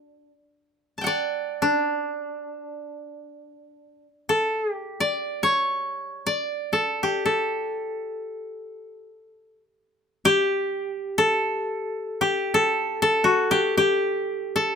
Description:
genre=japanese traditional, Japanese chamber music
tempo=free time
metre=none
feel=none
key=D ryukyu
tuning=A4 = 442 Hz
part: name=koto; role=solo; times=0.0-14.8 s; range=D4 to A5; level=-22 LUFS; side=left 1 dB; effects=none
room=little or no reverb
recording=close, detailed microphones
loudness=-22 LUFS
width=side -6 dB against mid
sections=0.0-3.7 A section; 3.7-14.8 A section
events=slowing down 11.1-14.8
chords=none

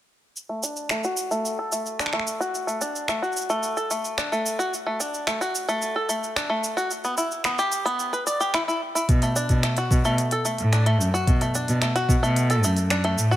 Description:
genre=folktronica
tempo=110 BPM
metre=4/4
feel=straight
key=unclear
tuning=A4 = 441 Hz
part: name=organic electronic drum kit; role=drums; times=0.4-13.4 s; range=cabasa, finger snaps, hi-hat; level=-29 LUFS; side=right 1 dB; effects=none
part: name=bluegrass banjo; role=arpeggios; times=0.5-13.4 s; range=A3 to D5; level=-25 LUFS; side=equal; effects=vintage 12-bit sampler grit, low-pass filter, ping-pong delay
part: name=rich cello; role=bass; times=9.1-13.3 s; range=F#2 to B2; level=-22 LUFS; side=equal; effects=none
part: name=electronic kick drum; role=drums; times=9.1-12.2 s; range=none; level=-21 LUFS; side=equal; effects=none
room=light reverb, digital ambience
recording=none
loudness=-21 LUFS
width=side -13 dB against mid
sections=0.4-9.1 A section; 9.1-13.4 B section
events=filter sweep on five-string banjo 0.4-9.1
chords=0.4 D/A; 6.9 Em; 9.1 Bm7

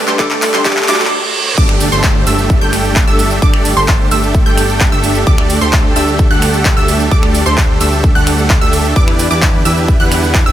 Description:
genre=EDM, festival progressive house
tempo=130 BPM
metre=4/4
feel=straight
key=unclear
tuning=A4 = 440 Hz
part: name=soft struck synth lead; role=melody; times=0.0-1.1 s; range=F#4 to B4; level=-21 LUFS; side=equal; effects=chorus, tape echo
part: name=dark studio string section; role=sustained chords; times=0.0-10.5 s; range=D3 to A4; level=-22 LUFS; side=right 1 dB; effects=sidechain pumping
part: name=wide unison pluck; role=arpeggios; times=0.0-10.5 s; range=C6 to G6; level=-20 LUFS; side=right 2 dB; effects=sidechain pumping, tape echo
part: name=supersaw chords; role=riff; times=0.0-10.5 s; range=A3 to G5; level=-16 LUFS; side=right 1 dB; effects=sidechain pumping, tape echo
part: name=riser, reverse cymbal and downlifter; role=sound effects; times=0.0-5.3 s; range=none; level=-21 LUFS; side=right 2 dB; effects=none
part: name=warm grand piano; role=accompaniment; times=0.1-1.0 s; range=D3 to G4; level=-24 LUFS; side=left 2 dB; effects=sidechain pumping, tape echo
part: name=big-room dance drum kit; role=drums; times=0.1-10.4 s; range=crash cymbal, finger snaps, handclaps, hi-hat, shaker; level=-18 LUFS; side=equal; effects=none
part: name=electronic kick drum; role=drums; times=0.2-10.4 s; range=none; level=-12 LUFS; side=equal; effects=none
part: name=fat analog bass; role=bass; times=1.6-10.5 s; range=G1 to E2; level=-17 LUFS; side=equal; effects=sidechain pumping
room=light reverb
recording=high-pass filter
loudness=-9 LUFS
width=side -12 dB against mid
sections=0.0-1.6 A section; 1.6-10.5 B section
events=build-up 0.0-1.6; drum fill 0.0-1.1; riser 0.0-1.6; filter sweep 0.0-1.6; reverse cymbal 0.7-1.6; break 1.1-1.6; drop 1.6-10.5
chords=0.0 Dsus4; 1.6 Gsus2; 5.3 Dsus4; 9.0 Em7

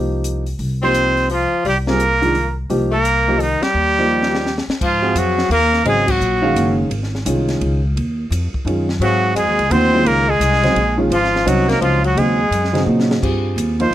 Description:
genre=modal jazz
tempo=171 BPM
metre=3/4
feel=swing 64% on 8ths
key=C minor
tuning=A4 = 438 Hz
part: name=warm grand piano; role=accompaniment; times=0.0-13.9 s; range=C#3 to E#5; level=-20 LUFS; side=right 1 dB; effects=none
part: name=upright bass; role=bass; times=0.0-13.9 s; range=F#1 to A#2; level=-20 LUFS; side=equal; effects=none
part: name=compact cocktail drum kit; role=drums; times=0.2-13.9 s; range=crash cymbal, hi-hat, kick drum, ride cymbal, snare drum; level=-27 LUFS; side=equal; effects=none
part: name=trumpet with straight mute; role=melody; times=0.8-6.8, 9.0-13.9 s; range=Eb4 to B#4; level=-18 LUFS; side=right 3 dB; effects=none
part: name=bright tenor saxophone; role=second line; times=0.8-6.8, 9.0-12.9 s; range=Eb3 to B#3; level=-21 LUFS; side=left 5 dB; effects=none
room=light reverb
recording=close, detailed microphones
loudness=-14 LUFS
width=side -13 dB against mid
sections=0.0-4.8 A section; 4.8-13.2 B section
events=band accent 3.6, 6.0; drum fill 4.1-4.8, 12.9-13.2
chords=0.0 Cm11; 3.8 Eb; 4.8 G#13sus4; 13.2 Cm11

